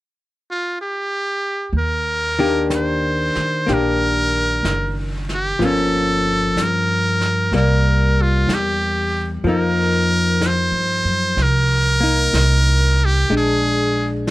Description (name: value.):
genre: jazz ballad.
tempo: 62 BPM.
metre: 4/4.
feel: swing 68% on 8ths.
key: Eb major.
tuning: A4 = 443 Hz.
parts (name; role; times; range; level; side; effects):
trumpet with metal mute; melody; 0.5-14.1 s; F4 to C5; -20 LUFS; right 1 dB; none.
upright bass; bass; 1.7-14.3 s; Gb1 to G2; -20 LUFS; equal; none.
vintage brush drum kit; drums; 1.7-14.3 s; brushed snare drum, hi-hat, snare drum; -30 LUFS; equal; none.
archtop guitar, miked and amplified; accompaniment; 2.4-14.3 s; Eb3 to G4; -21 LUFS; left 2 dB; none.
room: small room reverb.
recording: none.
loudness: -16 LUFS.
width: side -17 dB against mid.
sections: 0.0-1.7 A section; 1.7-14.3 B section.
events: none.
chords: 0.0 N.C.; 1.7 Ebmaj7; 5.6 Gm7b5; 7.5 C7; 9.4 F7sus4; 13.3 Bb7.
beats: 0.76 | 1.73 2.70 3.67 4.64 | 5.60 6.56 7.53 8.49 | 9.45 10.41 11.37 12.34 | 13.31 14.28.